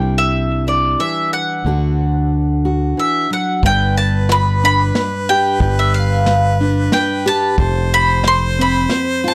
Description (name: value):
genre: acoustic folk duo or small band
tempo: 91 BPM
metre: 3/4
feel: straight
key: unclear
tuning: A4 = 440 Hz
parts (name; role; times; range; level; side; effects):
- mandolin; melody; 0.0-9.3 s; D5 to C6; -20 LUFS; equal; none
- fingerpicked steel-string acoustic guitar; accompaniment; 0.0-9.3 s; F2 to G4; -23 LUFS; equal; none
- fingered electric bass; bass; 0.0-8.9 s; F1 to D2; -20 LUFS; equal; none
- warm harmonica; second line; 3.6-9.3 s; B4 to C5; -26 LUFS; equal; none
- vintage brush drum kit; drums; 3.6-9.1 s; hi-hat, kick drum, snare drum; -21 LUFS; equal; none
room: light reverb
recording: dry, gritty hardware recording, transformer saturation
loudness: -16 LUFS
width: mono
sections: 0.0-3.6 A section; 3.6-9.3 B section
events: none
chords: 0.0 Cadd9; 1.7 D; 3.6 G; 7.6 F